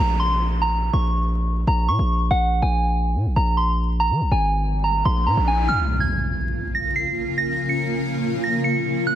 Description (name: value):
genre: hip hop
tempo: 142 BPM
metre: 4/4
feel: half-time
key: Bb minor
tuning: A4 = 436 Hz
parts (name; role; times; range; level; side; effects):
- soft synth bell; melody; 0.0-9.2 s; Gb5 to Db7; -23 LUFS; right 1 dB; chorus, low-pass filter, digital delay
- distorted 808-style bass; bass; 0.0-5.7 s; Ab1 to F3; -20 LUFS; equal; distortion
- downlifter, riser and impact; sound effects; 0.0-7.4 s; none; -29 LUFS; equal; none
- granular cloud pad; sustained chords; 6.5-9.2 s; Db3 to F4; -25 LUFS; left 1 dB; built-in reverb
room: digital ambience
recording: dense, heavily limited modern master, vinyl crackle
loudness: -19 LUFS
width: side -11 dB against mid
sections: 0.0-5.7 A section; 5.7-9.2 B section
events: riser 4.7-5.7; impact 5.7-7.4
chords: 0.0 Bbm; 2.3 Absus2/Bb; 5.7 Bbm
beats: 0.19 | 0.62 1.04 1.46 1.88 | 2.31 2.73 3.15 3.58 | 4.00 4.42 4.84 5.26 | 5.69 6.11 6.53 6.96 | 7.38 7.80 8.22 8.64 | 9.07